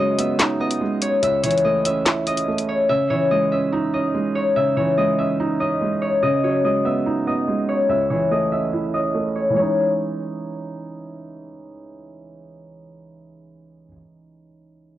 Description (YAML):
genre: hip hop, drill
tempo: 144 BPM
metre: 4/4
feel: half-time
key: C# minor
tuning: A4 = 439 Hz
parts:
  - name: Celtic harp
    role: melody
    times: 0.0-11.5 s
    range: C#5 to E5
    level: -21 LUFS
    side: left 2 dB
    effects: low-pass filter
  - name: felt-muted upright piano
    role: accompaniment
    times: 0.0-15.0 s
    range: C#2 to E4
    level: -23 LUFS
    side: right 3 dB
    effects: low-pass filter
  - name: drill drum kit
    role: drums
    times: 0.2-2.7 s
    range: handclaps, hi-hat, snare drum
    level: -21 LUFS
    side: left 1 dB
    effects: vintage 12-bit sampler grit
room: little or no reverb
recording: dry, gritty hardware recording, cassette tape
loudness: -18 LUFS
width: side -13 dB against mid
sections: 0.0-9.6 A section; 9.6-12.9 B section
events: break 0.0-2.9; filter sweep 0.0-9.6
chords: 0.0 G#m7/C#; 1.2 A/C#; 2.9 C#madd9; 6.2 G#m7/C#; 7.9 A/C#; 9.6 C#madd9